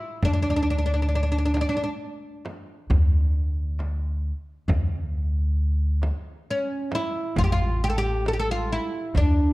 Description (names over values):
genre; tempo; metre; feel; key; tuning
Arabic maqam ensemble; 134 BPM (eighths); 10/8; straight; D maqam nahawand; A4 = 440 Hz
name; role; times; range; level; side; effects
oud; melody; 0.0-9.5 s; C#4 to A4; -25 LUFS; equal; none
upright bass; bass; 0.2-9.5 s; A1 to D2; -23 LUFS; equal; none
darbuka; percussion; 0.2-9.3 s; none; -29 LUFS; left 1 dB; none
frame drum; percussion; 0.2-9.4 s; none; -30 LUFS; right 1 dB; none
room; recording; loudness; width
moderate recital hall reverb, RT60 1.5 s; dark, warm production; -22 LUFS; side -19 dB against mid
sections
0.0-9.5 A section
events
none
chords
none